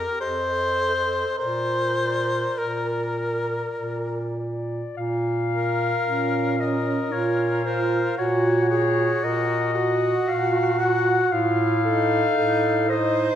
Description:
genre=classical, lyrical piece for single-reed quartet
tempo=49-58 BPM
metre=3/4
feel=rubato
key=Bb major, Bb minor from 5.0 s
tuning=A4 = 439 Hz
part: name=warm clarinet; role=melody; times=0.0-13.2 s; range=C5 to Bb5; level=-27 LUFS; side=left 6 dB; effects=none
part: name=mellow alto saxophone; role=second line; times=0.0-13.4 s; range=Db4 to C5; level=-26 LUFS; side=right 4 dB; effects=none
part: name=clear tenor saxophone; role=accompaniment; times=0.0-13.4 s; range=Eb4 to C5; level=-26 LUFS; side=left 2 dB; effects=none
part: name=warm bass clarinet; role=bass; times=0.0-13.3 s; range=F2 to Bb2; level=-26 LUFS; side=right 1 dB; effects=none
room=wet recital hall reverb, RT60 1.4 s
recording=none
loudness=-20 LUFS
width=side -10 dB against mid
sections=0.0-5.0 A section; 5.0-13.4 B section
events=none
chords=0.2 F7; 1.4 Bb; 5.0 Bbm; 8.2 Ebm/Bb; 11.3 F7/A

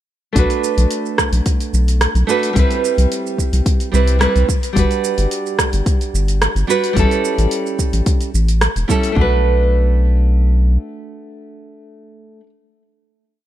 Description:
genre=sunset chillout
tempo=109 BPM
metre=4/4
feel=straight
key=B minor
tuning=A4 = 440 Hz
part: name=nylon-string guitar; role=accompaniment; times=0.3-12.5 s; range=G3 to B4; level=-19 LUFS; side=right 2 dB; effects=auto-pan, low-pass filter, ping-pong delay
part: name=round analog bass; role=bass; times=0.4-10.8 s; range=E1 to C2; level=-14 LUFS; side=equal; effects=none
part: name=deep house drum kit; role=drums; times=0.4-9.1 s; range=hi-hat, rim click, shaker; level=-22 LUFS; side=right 2 dB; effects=none
part: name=electronic kick drum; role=drums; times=0.4-9.3 s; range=none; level=-17 LUFS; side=equal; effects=none
room=digital ambience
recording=none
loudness=-14 LUFS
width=side -12 dB against mid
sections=0.4-9.2 groove; 9.2-11.4 final chord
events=none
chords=0.4 Bm7; 2.6 Cmaj7; 4.8 Gmaj7; 7.0 A7; 9.2 Bm7

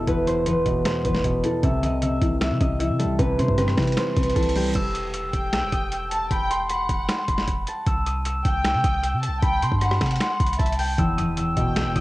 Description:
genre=hip hop, trap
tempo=154 BPM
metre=4/4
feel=half-time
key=E harmonic minor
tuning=A4 = 440 Hz
part: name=concert harp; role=melody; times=0.0-12.0 s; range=G4 to E6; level=-26 LUFS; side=equal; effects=cassette tape
part: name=dark concert grand piano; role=accompaniment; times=0.0-4.8, 11.0-12.0 s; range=E2 to G3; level=-24 LUFS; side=left 1 dB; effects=cassette tape
part: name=clean 808-style bass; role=bass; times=0.0-12.0 s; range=D#1 to C3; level=-26 LUFS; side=equal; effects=none
part: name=boom bap sampler-style drum kit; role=drums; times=0.1-12.0 s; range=crash cymbal, finger snaps, hi-hat, kick drum, rim click, snare drum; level=-26 LUFS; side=equal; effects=overdrive, vintage 12-bit sampler grit, cassette tape
part: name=reverse cymbal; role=sound effects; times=4.1-4.8 s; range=none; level=-38 LUFS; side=right 3 dB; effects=none
part: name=dark studio violin section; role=second line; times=5.3-12.0 s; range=E5 to A5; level=-28 LUFS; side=equal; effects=cassette tape, analog delay
room=digital ambience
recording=home recording on cassette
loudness=-20 LUFS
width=side -18 dB against mid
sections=0.0-4.8 A section; 4.8-12.0 B section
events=reverse cymbal 4.1-4.8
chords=0.0 E5; 1.6 C; 4.8 Em; 7.9 C; 11.0 Em

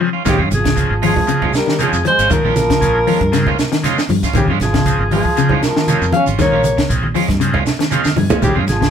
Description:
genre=afrobeat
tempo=118 BPM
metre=4/4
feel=swing 53% on 16ths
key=Bb dorian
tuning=A4 = 440 Hz
part: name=combo organ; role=accompaniment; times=0.0-8.6 s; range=Db3 to Ab5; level=-23 LUFS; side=left 1 dB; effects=none
part: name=clean electric guitar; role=arpeggios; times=0.0-8.9 s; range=Db3 to F3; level=-20 LUFS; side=left 5 dB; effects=none
part: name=electric guitar at the edge of break-up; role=stabs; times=0.0-8.8 s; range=Ab3 to F4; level=-23 LUFS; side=right 7 dB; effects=none
part: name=breathy alto saxophone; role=melody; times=0.3-8.9 s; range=G4 to F5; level=-18 LUFS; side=left 1 dB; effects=none
part: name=trombone with metal mute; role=second line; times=0.3-8.9 s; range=Db3 to Db4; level=-23 LUFS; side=right 2 dB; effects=none
part: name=fingered electric bass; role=bass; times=0.3-8.9 s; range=Ab1 to G2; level=-20 LUFS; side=equal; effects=none
part: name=compact cocktail drum kit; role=drums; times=0.3-8.9 s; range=hi-hat, kick drum, snare drum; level=-20 LUFS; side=right 1 dB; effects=none
part: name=congas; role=percussion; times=0.3-8.8 s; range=none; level=-22 LUFS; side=right 2 dB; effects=none
part: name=shekere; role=percussion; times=0.3-8.9 s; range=none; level=-26 LUFS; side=right 6 dB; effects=none
room=moderate studio ambience, RT60 0.5 s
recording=band playing live in one room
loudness=-13 LUFS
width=side -8 dB against mid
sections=0.3-8.9 A section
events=break 0.0; transistor combo organ fill 7.7-8.4; drum fill 8.0-8.4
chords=0.3 Bbm7

